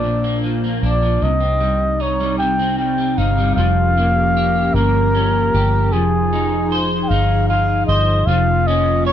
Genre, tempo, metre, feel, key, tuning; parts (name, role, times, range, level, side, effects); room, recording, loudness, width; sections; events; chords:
pop; 51 BPM (dotted quarters); 6/8; straight; A4 = 440 Hz
breathy flugelhorn; melody; 0.0-9.1 s; Ab4 to G5; -19 LUFS; equal
electric guitar at the edge of break-up; accompaniment; 0.0-9.1 s; Bb2 to Db5; -20 LUFS; equal; double-tracked left and right
airy breathy pad; sustained chords; 0.0-9.1 s; C3 to Bb4; -25 LUFS; left 1 dB; chorus
vintage muted fingered electric bass; bass; 0.0-9.1 s; F1 to C2; -19 LUFS; equal
little or no reverb; dry, close 1970s-style studio recording; -14 LUFS; side -10 dB against mid
0.0-3.6 A section; 3.6-9.1 B section
0.0 Bb; 1.2 Cm; 3.6 Gm7b5/F; 5.9 Fm7; 8.3 Bbm/F